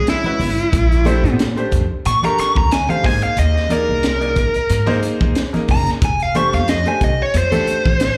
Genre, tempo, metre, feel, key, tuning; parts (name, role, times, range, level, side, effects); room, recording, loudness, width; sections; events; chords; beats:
electric jazz fusion; 91 BPM; 4/4; swing 55% on 16ths; A4 = 439 Hz
dark smooth lead guitar; melody; 0.0-8.2 s; E4 to Db6; -21 LUFS; equal; overdrive, slapback echo
bright grand piano; accompaniment; 0.0-8.0 s; G#3 to Eb5; -25 LUFS; equal; slapback echo
upright bass; bass; 0.0-8.2 s; F1 to Bb2; -22 LUFS; equal
crisp fusion drum kit; drums; 0.1-8.2 s; hi-hat, kick drum, snare drum; -23 LUFS; equal
congas; percussion; 0.2-8.0 s; -29 LUFS; equal
light reverb; live gig heard through the venue's PA, club reverb; -17 LUFS; mono
0.0-8.2 A section
lead electric guitar solo 0.0-8.2
0.0 Amaj9 (rootless); 0.7 Bbmaj9; 3.0 Abadd9; 6.0 Fadd9
0.06 | 0.73 1.39 2.05 2.71 | 3.37 4.04 4.70 5.36 | 6.02 6.68 7.34 8.00